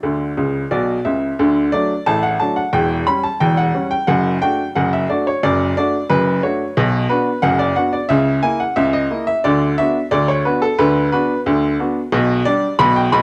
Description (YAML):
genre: ragtime piano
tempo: 89 BPM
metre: 2/4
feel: straight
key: unclear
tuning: A4 = 437 Hz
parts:
  - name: bright baby grand piano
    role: solo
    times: 0.0-13.2 s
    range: E1 to B5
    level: -17 LUFS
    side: equal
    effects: cassette tape
room: small room reverb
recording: home recording on cassette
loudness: -17 LUFS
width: mono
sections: 0.0-1.4 A section; 1.4-13.2 B section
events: grand piano fill 0.4-1.4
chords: 0.0 N.C.; 1.4 D; 2.7 C#dim/E; 4.1 D/F#; 6.8 Bm; 8.1 A#dim/C#; 9.4 Bm/D; 12.1 G/B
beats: | 0.03 0.71 | 1.39 2.06 | 2.74 3.41 | 4.08 4.75 | 5.42 6.10 | 6.77 7.44 | 8.11 8.78 | 9.45 10.12 | 10.79 11.46 | 12.13 12.80